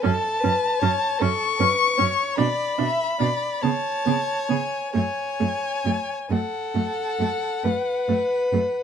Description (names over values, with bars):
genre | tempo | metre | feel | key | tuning
classical, slow romantic movement for string quartet | 44-52 BPM (dotted quarters) | 12/8 | rubato | F# minor | A4 = 440 Hz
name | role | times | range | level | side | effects
warm violin | melody | 0.0-8.8 s | F#5 to C#6 | -25 LUFS | left 6 dB | none
rich violin | second line | 0.0-8.8 s | A4 to E5 | -26 LUFS | equal | none
rich viola | accompaniment | 0.0-8.6 s | A3 to D4 | -26 LUFS | right 5 dB | none
clear cello | bass | 0.1-8.6 s | F#2 to C#3 | -26 LUFS | right 4 dB | none
room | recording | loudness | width
light reverb | dark, warm production | -21 LUFS | side -8 dB against mid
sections
0.0-8.8 A section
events
none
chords
0.0 F#m; 2.4 Bm; 3.6 Amaj9/C#; 5.0 F#m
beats
| 0.05 1.21 2.38 3.63 | 4.95 6.31 7.65